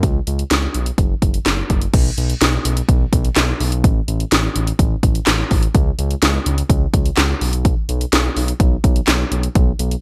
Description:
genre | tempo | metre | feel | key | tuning
synth-pop | 126 BPM | 4/4 | straight | unclear | A4 = 439 Hz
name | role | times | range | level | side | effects
smooth synth bass | bass | 0.0-10.0 s | F#1 to C#2 | -22 LUFS | equal | none
house drum kit | drums | 0.0-10.0 s | crash cymbal, handclaps, hi-hat, kick drum, snare drum | -18 LUFS | equal | overdrive, gated reverb
room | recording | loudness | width
light reverb, digital ambience | bright 1980s-style digital production | -17 LUFS | mono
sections
0.0-1.9 A section; 1.9-10.0 B section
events
none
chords
none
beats
| 0.03 0.51 0.98 1.46 | 1.94 2.41 2.89 3.37 | 3.84 4.32 4.79 5.27 | 5.75 6.22 6.70 7.17 | 7.65 8.13 8.60 9.08 | 9.55

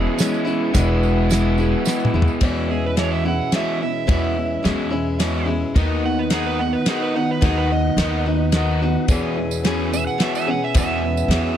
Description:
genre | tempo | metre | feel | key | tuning
folk rock and heartland rock | 108 BPM | 3/4 | straight | E major | A4 = 440 Hz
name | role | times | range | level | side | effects
overdriven slide guitar | second line | 0.0-0.2, 2.7-11.6 s | G#4 to F#5 | -26 LUFS | right 8 dB | none
picked old ladder-braced acoustic guitar | accompaniment | 0.0-11.6 s | E2 to G#4 | -24 LUFS | left 4 dB | none
tonewheel organ | sustained chords | 0.0-11.6 s | E3 to C#6 | -34 LUFS | equal | none
raw garage guitar | riff | 0.0-11.6 s | E2 to E4 | -24 LUFS | right 2 dB | overdrive
upright bass | bass | 0.0-11.6 s | E1 to E2 | -22 LUFS | equal | none
damped 70s drum kit | drums | 0.2-11.4 s | hi-hat, kick drum, ride cymbal, snare drum, toms | -20 LUFS | equal | none
tambourine | percussion | 0.2-2.3, 9.1-11.3 s | none | -33 LUFS | right 20 dB | none
room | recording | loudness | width
little or no reverb | dry, close 1970s-style studio recording | -17 LUFS | side -10 dB against mid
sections
0.0-2.4 A section; 2.4-11.6 B section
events
drum fill 1.9-2.4; electric slide guitar solo 2.4-11.6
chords
0.0 E6; 0.7 E; 2.4 E6; 5.8 B/D#; 9.1 E6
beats
0.19 | 0.75 1.30 1.86 | 2.42 2.98 3.53 | 4.09 4.65 5.21 | 5.76 6.32 6.88 | 7.43 7.99 8.54 | 9.10 9.65 10.21 | 10.77 11.32

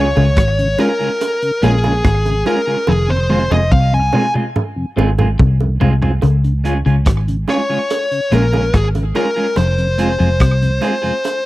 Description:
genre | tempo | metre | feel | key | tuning
roots reggae | 72 BPM | 4/4 | straight | Db major | A4 = 441 Hz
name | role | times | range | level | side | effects
fuzz lead guitar | melody | 0.0-11.5 s | Ab4 to Ab5 | -18 LUFS | left 1 dB | distortion, tape echo
clean electric guitar | accompaniment | 0.0-11.1 s | Ab3 to Ab4 | -21 LUFS | right 2 dB | tape echo
mellow tonewheel organ | accompaniment | 0.0-11.1 s | F2 to F4 | -22 LUFS | left 1 dB | chorus vibrato, slow rotary speaker
vintage muted fingered electric bass | bass | 0.0-10.8 s | F1 to Db2 | -16 LUFS | equal | none
electric guitar at the edge of break-up | riff | 0.2-10.7 s | F2 to Db3 | -19 LUFS | left 3 dB | none
bongos | percussion | 0.2-11.4 s | none | -24 LUFS | right 7 dB | none
crunchy breakbeat drum kit | drums | 0.4-11.4 s | hi-hat, kick drum, rim click, toms | -17 LUFS | equal | none
room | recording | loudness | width
little or no reverb | dry, close 1970s-style studio recording | -13 LUFS | side -17 dB against mid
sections
0.0-6.2 A section; 6.2-11.5 B section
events
lead electric guitar solo 0.0-6.2; drum fill 2.9-6.2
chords
0.0 Db; 2.9 Fm; 6.2 Db; 9.6 Fm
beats
0.37 1.21 2.04 | 2.88 3.72 4.55 5.39 | 6.23 7.06 7.90 8.73 | 9.57 10.40 11.24

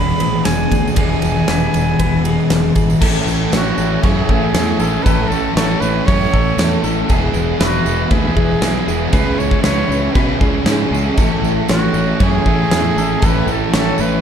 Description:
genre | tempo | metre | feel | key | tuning
rock, shoegaze and dream pop | 118 BPM | 4/4 | straight | A major | A4 = 444 Hz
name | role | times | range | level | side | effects
breathy silver concert flute | melody | 0.0-14.2 s | F#4 to B5 | -22 LUFS | right 2 dB | analog delay
string machine, cellos | sustained chords | 0.0-14.2 s | E3 to E6 | -27 LUFS | equal | none
electric guitar through a small old amp | arpeggios | 0.0-14.2 s | A3 to C#5 | -24 LUFS | left 2 dB | wide subtle chorus, analog delay
overdriven semi-hollow guitar | riff | 0.0-14.2 s | E2 to E4 | -21 LUFS | right 8 dB | reverse reverb
thick fuzz guitar | riff | 0.0-14.2 s | E2 to C#4 | -21 LUFS | left 7 dB | distortion, analog chorus
fingered electric bass | bass | 0.0-14.2 s | E1 to B2 | -21 LUFS | equal | none
tambourine | percussion | 0.1-14.1 s | none | -35 LUFS | right 9 dB | none
huge arena drum kit | drums | 0.2-13.9 s | crash cymbal, kick drum, ride cymbal, snare drum | -18 LUFS | equal | none
room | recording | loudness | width
moderate studio reverb, RT60 0.6 s | dark, warm production | -13 LUFS | side -8 dB against mid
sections
0.0-3.0 A section; 3.0-14.2 B section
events
none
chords
0.0 E7; 3.0 Amaj7; 7.1 E; 9.1 C#m7; 11.2 Amaj7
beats
0.46 | 0.97 1.48 1.99 2.50 | 3.01 3.52 4.03 4.54 | 5.05 5.56 6.07 6.58 | 7.09 7.60 8.11 8.62 | 9.13 9.64 10.15 10.66 | 11.18 11.69 12.20 12.71 | 13.22 13.73

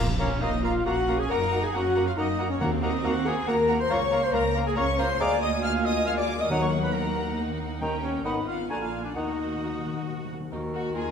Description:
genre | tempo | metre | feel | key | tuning
classical | 138 BPM | 3/4 | rubato | Bb minor, Eb minor from 5.2 s | A4 = 440 Hz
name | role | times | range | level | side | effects
rich symphonic violin section | melody | 0.0-11.0 s | Gb4 to Bb5 | -39 LUFS | left 1 dB | none
hollow concert flute | second line | 0.0-11.1 s | Gb5 to Cb6 | -38 LUFS | right 1 dB | none
warm clarinet | second line | 0.0-11.1 s | F4 to Ab5 | -36 LUFS | left 1 dB | none
clear symphonic viola section | accompaniment | 0.0-11.0 s | Bb3 to Gb4 | -36 LUFS | right 1 dB | none
mellow bassoon | accompaniment | 0.0-11.1 s | D3 to Bb3 | -35 LUFS | right 2 dB | none
rich symphonic double bass section | bass | 0.0-11.1 s | Ab1 to Gb2 | -32 LUFS | right 2 dB | none
timpani | percussion | 0.0-0.6, 2.6-3.2, 6.5-10.5 s | Bb2 to Eb3 | -35 LUFS | left 2 dB | none
mellow cor anglais | second line | 0.2-11.1 s | Db4 to F5 | -33 LUFS | right 2 dB | none
rich symphonic violin section | second line | 0.2-11.1 s | Gb4 to F6 | -36 LUFS | left 3 dB | none
mellow French horn section | sustained chords | 0.2-11.1 s | Bb3 to F5 | -28 LUFS | left 3 dB | none
rich symphonic cello section | bass | 0.4-11.1 s | Eb2 to Gb4 | -34 LUFS | right 3 dB | none
room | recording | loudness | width
moderate scoring stage reverb, RT60 1.9 s | minimal, uncompressed stereo recording | -24 LUFS | side -7 dB against mid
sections
0.0-10.5 A section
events
timpani fill 9.2-10.5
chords
0.0 Bbm; 1.3 Gb; 2.6 Ebm; 3.9 Bbm/Db; 5.2 Bb7/D; 6.5 Ebm; 7.8 Eb7; 8.2 Abm7; 8.7 Bb7; 9.2 Ebm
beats
0.42 0.86 | 1.30 1.74 2.17 | 2.61 3.04 3.47 | 3.90 4.33 4.76 | 5.20 5.63 6.06 | 6.50 6.93 7.37 | 7.81 8.24 8.69 | 9.15 9.61 10.07 | 10.52 10.95

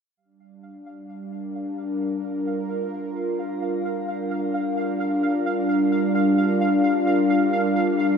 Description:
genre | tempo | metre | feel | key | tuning
ambient, sequencer-driven space music | free time | none | none | G minor | A4 = 439 Hz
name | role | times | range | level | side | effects
sweeping resonant pad | sustained chords | 0.2-8.2 s | G3 to Bb4 | -22 LUFS | equal | chorus
pulsing gated texture | texture | 0.9-8.2 s | F5 | -29 LUFS | right 1 dB | chorus, built-in reverb, shimmer reverb
room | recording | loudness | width
wet cathedral reverb, RT60 5.9 s | in a vast, echoing space | -21 LUFS | side -6 dB against mid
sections
0.2-8.2 A section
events
none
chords
0.2 Gm7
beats
free time

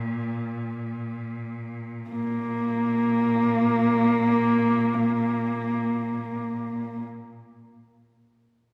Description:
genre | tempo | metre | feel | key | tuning
mongolian traditional, Mongolian folk | free time | none | none | unclear | A4 = 440 Hz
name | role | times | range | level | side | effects
clear cello | drone | 0.0-7.1 s | Bb2 | -33 LUFS | equal | none
dark horsehead fiddle | melody | 2.1-7.0 s | Bb3 | -25 LUFS | equal | none
room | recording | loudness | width
wet concert hall reverb, RT60 2.4 s | heard from further back in the room | -25 LUFS | mono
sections
0.0-2.1 A section; 2.1-7.6 B section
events
slowing down 0.0-2.1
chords
none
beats
free time

